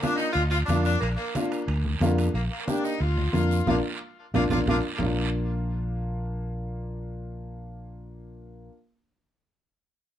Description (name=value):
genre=latin, cumbia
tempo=181 BPM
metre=4/4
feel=straight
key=Bb major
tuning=A4 = 440 Hz
part: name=bright saxophone section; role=melody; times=0.0-4.8 s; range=Bb3 to F4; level=-30 LUFS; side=left 1 dB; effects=tape echo
part: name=clear upright piano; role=accompaniment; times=0.0-8.7 s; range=Bb3 to G4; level=-29 LUFS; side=left 2 dB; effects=none
part: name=congas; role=percussion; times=0.0-5.1 s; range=none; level=-32 LUFS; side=right 4 dB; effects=none
part: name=guiro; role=percussion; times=0.0-5.1 s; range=none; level=-39 LUFS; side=right 6 dB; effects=none
part: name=timbales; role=percussion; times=0.0-2.3 s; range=none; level=-40 LUFS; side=right 3 dB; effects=none
part: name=fingered electric bass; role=bass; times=0.4-8.7 s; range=Bb1 to F2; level=-27 LUFS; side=equal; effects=none
room=moderate studio reverb, RT60 0.6 s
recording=dark, warm production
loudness=-24 LUFS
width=side -11 dB against mid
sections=0.0-5.0 A section; 5.0-7.7 B section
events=band accent 3.7-5.0; drum fill 4.2-5.0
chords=0.0 Bb